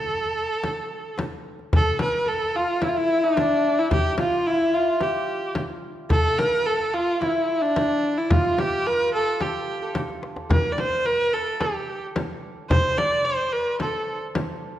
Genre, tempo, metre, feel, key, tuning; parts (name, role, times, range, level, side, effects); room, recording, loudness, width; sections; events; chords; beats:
Persian modal ensemble; 109 BPM; 4/4; straight; A dastgah shur; A4 = 440 Hz
rich kamancheh; melody; 0.0-14.2 s; D4 to D5; -23 LUFS; right 1 dB
santur; second line; 0.0-14.8 s; D4 to D5; -28 LUFS; left 1 dB
tombak; percussion; 0.1-14.5 s; -27 LUFS; equal
frame drum; percussion; 0.6-14.5 s; -27 LUFS; left 1 dB
wet recital hall reverb, RT60 1.7 s; -21 LUFS; side -12 dB against mid
0.0-1.7 A section; 1.7-14.8 B section
drum fill 10.0-10.5
0.09 0.63 1.18 | 1.73 2.27 2.82 3.37 | 3.92 4.46 5.01 5.56 | 6.11 6.66 7.21 7.76 | 8.31 8.86 9.41 9.96 | 10.51 11.06 11.61 12.16 | 12.71 13.25 13.80 14.35